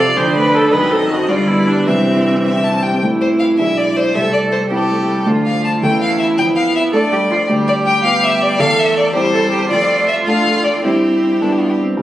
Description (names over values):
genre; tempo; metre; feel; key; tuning
quick classical-period movement for piano quartet; 107 BPM (dotted quarters); 6/8; straight; C major, A minor from 3.0 s, C major from 7.5 s; A4 = 440 Hz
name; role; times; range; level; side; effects
clear violin; melody; 0.0-11.8 s; F4 to A5; -18 LUFS; left 2 dB; none
rich cello; second line; 0.0-11.7 s; C3 to A4; -18 LUFS; right 2 dB; none
clear viola; accompaniment; 0.0-12.0 s; E3 to D5; -21 LUFS; equal; none
warm baby grand piano; accompaniment; 0.0-12.0 s; A1 to G5; -18 LUFS; equal; none
room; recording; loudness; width
wet scoring stage reverb, RT60 2.1 s; recorded on a phone in the room, studio ambience, compression; -12 LUFS; side -13 dB against mid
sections
0.0-3.0 A section; 3.0-12.0 B section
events
none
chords
0.2 Dm/F; 0.7 F#dim7; 1.3 G; 1.9 C; 3.0 Am; 3.6 E7/B; 4.1 Am/C; 5.3 Dm; 5.8 A/E; 6.4 Dm/F; 7.5 G7/D; 8.6 C/E; 9.7 Dm/F; 10.8 C/G; 11.4 G